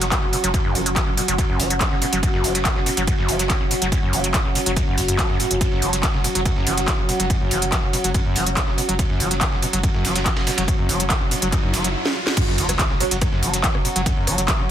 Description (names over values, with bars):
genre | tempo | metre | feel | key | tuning
driving peak-time techno | 142 BPM | 4/4 | straight | unclear | A4 = 439 Hz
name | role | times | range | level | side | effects
overdriven acid bass | riff | 0.0-14.6 s | F#2 to F#3 | -25 LUFS | equal | distortion, lush chorus, sidechain pumping, dub echo
saturated sub bass | bass | 0.0-14.7 s | F#1 | -27 LUFS | equal | tube saturation, sidechain pumping, low-pass filter
analog drone | drone | 0.0-14.7 s | F#3 | -30 LUFS | right 2 dB | chorus, sidechain pumping
dusty soul sampler-style drum kit | drums | 0.0-14.6 s | hi-hat, ride cymbal, snare drum | -30 LUFS | right 2 dB | high-pass filter on cymbals, high-pass filter on snare, high-pass filter on hats, high-pass filter on room
techno drum kit | drums | 0.0-14.6 s | crash cymbal, handclaps, hi-hat, rim click, snare drum | -23 LUFS | equal | overdrive
warbly tape-like pad | texture | 0.0-14.7 s | C#4 to F#5 | -29 LUFS | right 1 dB | chorus, built-in reverb, sidechain pumping
electronic kick drum | drums | 0.1-14.6 s | none | -22 LUFS | equal | overdrive
riser and sub drop | sound effects | 10.6-14.1 s | none | -30 LUFS | right 1 dB | none
filtered dub chord stab | stabs | 13.0-13.1 s | F#3 to F#4 | -28 LUFS | right 7 dB | phaser, lush chorus, sidechain pumping, dub echo
room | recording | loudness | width
light reverb | dense, heavily limited modern master | -18 LUFS | side -10 dB against mid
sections
0.0-12.4 A section; 12.4-14.7 B section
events
riser 10.6-12.4; drum fill 12.1-12.4; band accent 12.3; drop 12.4-14.7; impact 12.4-14.1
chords
0.0 F#5